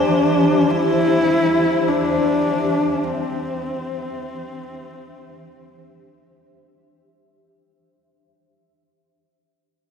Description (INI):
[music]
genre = dark ambient drone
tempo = free time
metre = none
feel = none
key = unclear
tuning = A4 = 440 Hz
[part]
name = dark horsehead fiddle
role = melody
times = 0.0-6.6 s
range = C4 to E4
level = -19 LUFS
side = left 2 dB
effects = tape echo
[part]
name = granular cloud pad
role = sustained chords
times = 0.0-7.8 s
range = E3 to E5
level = -21 LUFS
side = right 1 dB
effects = built-in reverb, lush chorus
[sound]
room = wet lush hall reverb, RT60 2.9 s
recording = dreamy mix soaked in reverb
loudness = -16 LUFS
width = side -6 dB against mid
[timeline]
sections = 0.0-7.8 A section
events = fade-out 0.0-7.8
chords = 0.0 Cadd9/E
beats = free time